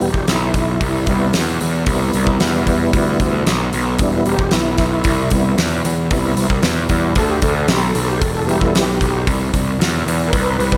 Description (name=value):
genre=blues rock power trio and southern rock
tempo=113 BPM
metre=4/4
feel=straight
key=E minor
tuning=A4 = 439 Hz
part: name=tonewheel organ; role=sustained chords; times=0.0-10.8 s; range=G3 to B4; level=-22 LUFS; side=equal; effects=slow rotary speaker, chorus vibrato
part: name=fuzz picked electric bass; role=bass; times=0.0-10.8 s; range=E1 to E2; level=-20 LUFS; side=equal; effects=overdrive
part: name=huge arena drum kit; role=drums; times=0.0-10.8 s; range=hi-hat, kick drum, snare drum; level=-22 LUFS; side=equal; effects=none
room=light reverb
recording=none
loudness=-17 LUFS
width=mono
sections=0.0-10.8 A section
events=tonewheel organ solo 0.0-10.8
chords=0.0 Em